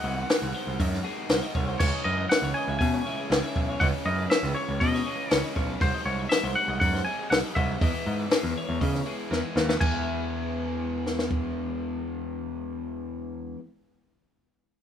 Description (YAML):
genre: math rock and midwest emo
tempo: 120 BPM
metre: 4/4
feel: straight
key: E major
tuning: A4 = 442 Hz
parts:
  - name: twangy electric guitar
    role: melody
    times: 0.0-13.5 s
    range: B#4 to G#5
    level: -30 LUFS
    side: equal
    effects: none
  - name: twelve-string electric guitar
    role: arpeggios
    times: 0.0-13.7 s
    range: E4 to E5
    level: -38 LUFS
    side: left 3 dB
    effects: none
  - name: biting overdriven guitar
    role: riff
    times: 0.0-13.6 s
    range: B#2 to F#4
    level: -33 LUFS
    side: equal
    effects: none
  - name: growling picked electric bass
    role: bass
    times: 0.0-13.5 s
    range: B1 to C#3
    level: -30 LUFS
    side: equal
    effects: overdrive
  - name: compact cocktail drum kit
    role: drums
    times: 0.3-11.4 s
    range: crash cymbal, hi-hat, kick drum, snare drum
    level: -26 LUFS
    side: equal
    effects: none
room: small room ambience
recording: rough home demo mix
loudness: -24 LUFS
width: side -9 dB against mid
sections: 0.0-9.8 A section; 9.8-13.8 B section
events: drum fill 9.3-9.8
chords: 0.0 G#7; 1.8 C#m9; 5.8 G#7/B#; 7.8 Emaj7; 9.8 E